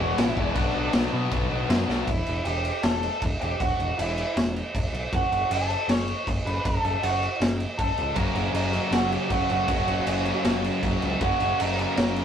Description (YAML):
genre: punk rock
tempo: 158 BPM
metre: 4/4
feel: straight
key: unclear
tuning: A4 = 442 Hz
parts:
  - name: bluesy overdriven lead guitar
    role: melody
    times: 0.0-12.2 s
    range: D4 to C#6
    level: -28 LUFS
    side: right 2 dB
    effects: distortion
  - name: biting overdriven guitar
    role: riff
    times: 0.0-2.1, 8.2-12.2 s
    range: E2 to B3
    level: -31 LUFS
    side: left 7 dB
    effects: none
  - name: thick fuzz guitar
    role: riff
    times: 0.0-2.1, 8.2-12.2 s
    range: F#2 to E4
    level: -31 LUFS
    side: equal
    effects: distortion
  - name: tight distorted guitar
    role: riff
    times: 0.0-2.1, 8.1-12.2 s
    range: B2 to F#4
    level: -34 LUFS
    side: right 8 dB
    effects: distortion
  - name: growling picked electric bass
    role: bass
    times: 0.0-12.2 s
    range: E1 to B2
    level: -30 LUFS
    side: equal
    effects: overdrive
  - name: raw garage drum kit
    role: drums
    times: 0.2-12.2 s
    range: crash cymbal, kick drum, snare drum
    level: -26 LUFS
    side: equal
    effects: none
room: light reverb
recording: rough rehearsal-room recording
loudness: -22 LUFS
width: side -8 dB against mid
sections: 0.0-2.1 A section; 2.1-12.2 B section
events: drum fill 1.9; half time 2.1-12.2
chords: 0.0 E; 0.6 Bm; 2.1 Em; 5.1 F#m; 8.2 F#